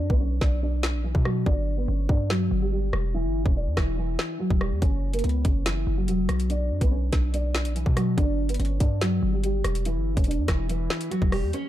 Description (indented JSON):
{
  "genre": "hip hop, drill",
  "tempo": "143 BPM",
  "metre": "4/4",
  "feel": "half-time",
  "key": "B minor",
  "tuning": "A4 = 440 Hz",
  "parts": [
    { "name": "nylon-string guitar", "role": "melody", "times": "0.0-11.7 s", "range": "E3 to D5", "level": "-28 LUFS", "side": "equal", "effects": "low-pass filter" },
    { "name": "hard-hitting 808-style bass", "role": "bass", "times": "0.0-11.5 s", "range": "E1 to B2", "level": "-26 LUFS", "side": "equal", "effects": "none" },
    { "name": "drill drum kit", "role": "drums", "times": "0.1-11.6 s", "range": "hi-hat, kick drum, rim click, snare drum", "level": "-25 LUFS", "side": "equal", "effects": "none" }
  ],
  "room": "little or no reverb",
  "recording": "dark, warm production",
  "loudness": "-22 LUFS",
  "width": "side -13 dB against mid",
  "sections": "0.0-11.7 A section",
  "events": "break 0.0-4.8, 11.5; filter sweep on nylon-string guitar 0.0-11.5",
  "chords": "0.0 Bmadd9; 1.5 G5; 4.8 F#sus4; 6.5 Bmadd9; 8.2 G5",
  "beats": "0.20 0.62 1.04 | 1.46 1.88 2.30 2.72 | 3.14 3.56 3.98 4.40 | 4.82 5.24 5.66 6.08 | 6.50 6.92 7.34 7.76 | 8.18 8.60 9.02 9.44 | 9.86 10.27 10.69 11.11 | 11.53"
}